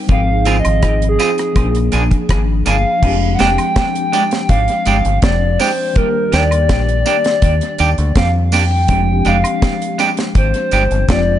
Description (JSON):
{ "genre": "lovers rock reggae", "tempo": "82 BPM", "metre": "4/4", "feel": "straight", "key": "F dorian", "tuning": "A4 = 440 Hz", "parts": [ { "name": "mellow tine electric piano", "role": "accompaniment", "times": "0.0-11.4 s", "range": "Eb3 to Bb4", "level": "-22 LUFS", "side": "left 3 dB", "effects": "ensemble chorus, dub echo" }, { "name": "reedy FM lead", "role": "melody", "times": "0.1-11.4 s", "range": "Ab4 to G5", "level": "-18 LUFS", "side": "equal", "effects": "chorus, tape echo" }, { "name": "deep dub fingered electric bass", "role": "bass", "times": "0.1-11.4 s", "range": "F1 to F2", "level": "-16 LUFS", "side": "equal", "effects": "none" }, { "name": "deep reggae drum kit", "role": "drums", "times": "0.1-11.3 s", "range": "crash cymbal, hi-hat, kick drum, rim click, snare drum", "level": "-18 LUFS", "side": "equal", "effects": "dub echo" }, { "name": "clean electric guitar", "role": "stabs", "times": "0.5-10.8 s", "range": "Ab3 to Ab4", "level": "-20 LUFS", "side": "right 5 dB", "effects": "dub echo" }, { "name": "tambourine and woodblock", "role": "percussion", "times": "0.5-10.9 s", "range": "none", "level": "-27 LUFS", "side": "right 1 dB", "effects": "none" } ], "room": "light reverb", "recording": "nothing above 10.6 kHz", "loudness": "-12 LUFS", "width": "side -11 dB against mid", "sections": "0.0-3.0 A section; 3.0-11.4 B section", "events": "soft synth lead solo 0.0-3.0", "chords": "0.1 Ab6; 1.6 Bb7; 3.0 Fm69; 6.0 Ebmaj7; 8.9 Fm69" }